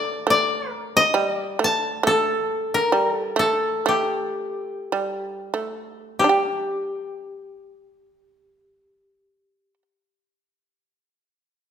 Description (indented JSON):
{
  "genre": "japanese traditional, Japanese chamber music",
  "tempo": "43-69 BPM",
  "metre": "2/4",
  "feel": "rubato",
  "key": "G hirajoshi",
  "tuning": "A4 = 440 Hz",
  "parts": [
    { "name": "koto", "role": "melody", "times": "0.0-9.7 s", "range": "G4 to A5", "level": "-21 LUFS", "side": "left 2 dB", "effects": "none" },
    { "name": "shamisen", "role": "second line", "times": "0.0-9.8 s", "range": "G3 to G4", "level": "-25 LUFS", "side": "right 4 dB", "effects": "none" }
  ],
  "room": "moderate scoring stage reverb, RT60 1.7 s",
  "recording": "none",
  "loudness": "-20 LUFS",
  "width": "side -8 dB against mid",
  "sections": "0.0-6.2 A section; 6.2-11.5 B section",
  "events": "slowing down 2.0-6.2",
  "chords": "none"
}